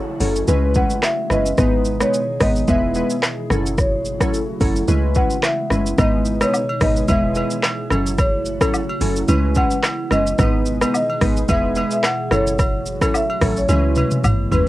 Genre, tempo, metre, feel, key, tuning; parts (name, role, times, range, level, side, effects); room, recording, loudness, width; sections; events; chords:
afrobeats; 109 BPM; 4/4; swing 55% on 16ths; C# minor; A4 = 443 Hz
marimba with medium hard mallets; melody; 0.0-14.7 s; B4 to F#5; -24 LUFS; equal; cassette tape
glassy FM pad; sustained chords; 0.0-14.7 s; B2 to G#4; -28 LUFS; equal; ensemble chorus, built-in reverb, cassette tape
downlifter; sound effects; 0.0-1.6 s; -39 LUFS; equal
glassy digital keys; accompaniment; 0.2-14.7 s; F#3 to B4; -21 LUFS; equal; chorus, cassette tape
deep log drum bass; bass; 0.2-14.7 s; E1 to C#2; -21 LUFS; equal
afro-pop drum kit; drums; 0.2-14.7 s; handclaps, hi-hat, kick drum, rim click, shaker, toms; -20 LUFS; equal
agogo bells and woodblock; percussion; 6.0-14.7 s; -27 LUFS; equal
light reverb; home recording on cassette; -16 LUFS; side -16 dB against mid
0.0-14.7 A section
drum fill 13.7-14.7
0.5 C#m7; 1.6 G#m; 2.7 E; 3.5 F#m7; 4.9 C#m7; 6.0 G#m; 7.1 E; 7.9 F#m7; 9.3 C#m7; 10.4 G#m; 11.5 E; 12.3 F#m7; 13.7 C#m7